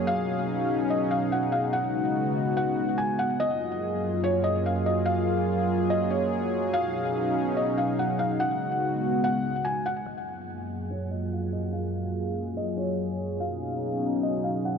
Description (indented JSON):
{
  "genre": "hip hop",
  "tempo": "144 BPM",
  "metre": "4/4",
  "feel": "half-time",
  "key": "unclear",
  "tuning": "A4 = 440 Hz",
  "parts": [
    { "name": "felt-muted upright piano", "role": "melody", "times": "0.0-14.8 s", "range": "C#5 to G#5", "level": "-29 LUFS", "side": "equal", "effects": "low-pass filter, ping-pong delay" },
    { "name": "warm analog pad", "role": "sustained chords", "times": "0.0-14.8 s", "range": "F#2 to G#4", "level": "-26 LUFS", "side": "equal", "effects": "chorus, low-pass filter" }
  ],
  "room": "moderate huge ambient reverb, RT60 6.3 s",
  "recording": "none",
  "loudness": "-24 LUFS",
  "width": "side -6 dB against mid",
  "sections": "0.0-10.1 A section; 10.1-14.8 B section",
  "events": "filter sweep 10.1-14.8",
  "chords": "0.1 B69; 1.7 C#7sus4; 3.4 F#maj7; 6.7 B69; 8.4 C#7sus4; 10.1 F#maj7; 13.4 B69",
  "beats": "| 0.07 0.48 0.90 1.32 | 1.74 2.15 2.57 2.98 | 3.40 3.82 4.24 4.65 | 5.07 5.49 5.90 6.32 | 6.74 7.15 7.57 7.99 | 8.40 8.82 9.23 9.65 | 10.07 10.48 10.90 11.32 | 11.73 12.15 12.57 12.98 | 13.40 13.82 14.23 14.65"
}